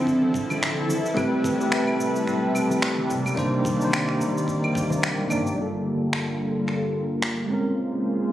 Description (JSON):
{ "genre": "sunset chillout", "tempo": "109 BPM", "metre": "4/4", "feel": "swing 56% on 16ths", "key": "unclear", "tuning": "A4 = 435 Hz", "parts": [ { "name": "bell-like tine electric piano", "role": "accompaniment", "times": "0.0-8.3 s", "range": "F3 to D5", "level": "-26 LUFS", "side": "equal", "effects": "fast stereo tremolo, auto-pan, low-pass filter, tape echo" }, { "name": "lush unison pad", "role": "sustained chords", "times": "0.0-8.3 s", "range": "C3 to D5", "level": "-25 LUFS", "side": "equal", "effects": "chorus, phaser" }, { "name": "electronic cabasa, claves and finger snaps", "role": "drums", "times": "0.1-7.3 s", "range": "none", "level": "-29 LUFS", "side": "equal", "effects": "small room ambience" }, { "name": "electronic kick drum", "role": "drums", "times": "0.1-4.9 s", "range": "none", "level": "-33 LUFS", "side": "equal", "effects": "small room ambience" }, { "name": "congas", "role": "percussion", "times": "0.2-5.4 s", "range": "none", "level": "-33 LUFS", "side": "left 1 dB", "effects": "none" }, { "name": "upright bass", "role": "bass", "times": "0.3-8.3 s", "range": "E1 to Eb2", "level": "-34 LUFS", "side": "equal", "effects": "none" } ], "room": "moderate lush hall reverb, RT60 1.9 s", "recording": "recorded on a phone in the room, studio reverb, compression", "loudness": "-22 LUFS", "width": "side -12 dB against mid", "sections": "0.0-5.6 A section; 5.6-8.3 B section", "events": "filter sweep on tine electric piano 5.6-8.3", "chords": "0.0 Dm9; 0.9 Am9; 3.1 Cm9; 5.6 Gm9; 7.5 Bbm9", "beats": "0.07 0.62 | 1.17 1.72 2.27 2.83 | 3.38 3.92 4.48 5.03 | 5.58 6.13 6.68 7.23 | 7.78" }